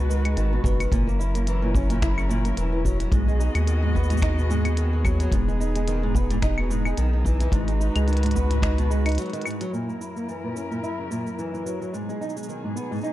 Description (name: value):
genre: folktronica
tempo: 109 BPM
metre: 4/4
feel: swing 56% on 16ths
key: unclear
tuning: A4 = 440 Hz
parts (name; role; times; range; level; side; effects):
- muted string quartet; sustained chords; 0.0-13.1 s; F#2 to D#5; -31 LUFS; equal; none
- flamenco guitar; arpeggios; 0.0-13.1 s; G#2 to E4; -28 LUFS; equal; vintage 12-bit sampler grit, low-pass filter, ping-pong delay
- round analog bass; bass; 0.0-9.2 s; E1 to D#2; -23 LUFS; equal; tube saturation
- minimal click drum kit; drums; 0.1-13.1 s; claves, finger snaps, hi-hat, shaker; -35 LUFS; left 2 dB; none
- kick drum; drums; 0.6-8.8 s; none; -25 LUFS; equal; none
room: small room reverb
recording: dark, warm production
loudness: -21 LUFS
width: side -14 dB against mid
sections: 0.0-9.7 A section; 9.7-13.1 B section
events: break 9.2-9.7; filter sweep on nylon-string guitar 9.7-13.1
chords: 0.0 G#m7; 0.9 F#7; 3.1 B6; 5.3 Emaj7; 7.5 G#m7; 9.7 F#7; 11.9 B6